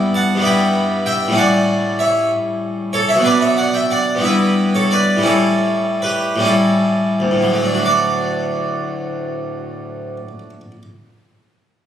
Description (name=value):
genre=classical, baroque-style suite movement for harpsichord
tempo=40-67 BPM (dotted quarters)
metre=6/8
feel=rubato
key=D major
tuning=A4 = 440 Hz
part: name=harpsichord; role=solo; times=0.0-10.8 s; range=D2 to B5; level=-15 LUFS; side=equal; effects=none
room=wet recital hall reverb, RT60 1.5 s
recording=recorded on a phone in the room, club reverb, compression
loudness=-14 LUFS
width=side -9 dB against mid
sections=0.0-7.9 A section; 7.9-11.9 B section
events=slowing down 2.3-7.9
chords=0.0 Em/G; 1.4 A7; 3.2 Bm; 4.2 Em/G; 5.3 A7; 7.9 D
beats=0.44 | 1.36 2.30 | 3.25 4.25 | 5.26 6.45 | 7.86 9.21 | 10.56